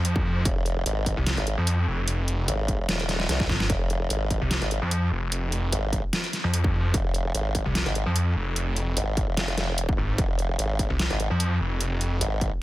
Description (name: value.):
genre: heavy wobble dubstep.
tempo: 148 BPM.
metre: 4/4.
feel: swing 53% on 16ths, half-time.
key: F minor.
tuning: A4 = 439 Hz.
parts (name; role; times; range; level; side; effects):
snarling distorted saw bass; bass; 0.0-12.2 s; F1 to F2; -25 LUFS; equal; distortion, overdrive.
dubstep drum kit; drums; 0.0-12.5 s; hi-hat, snare drum; -28 LUFS; equal; overdrive.
electronic kick drum; drums; 0.2-12.5 s; none; -27 LUFS; equal; distortion.
formant-sweep wobble bass; bass; 0.5-12.5 s; Eb1 to C2; -26 LUFS; equal; chorus, overdrive.
room: little or no reverb.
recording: none.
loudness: -23 LUFS.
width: side -16 dB against mid.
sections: 0.0-12.6 A section.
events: drum fill 3.1-3.7.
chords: 0.0 F5.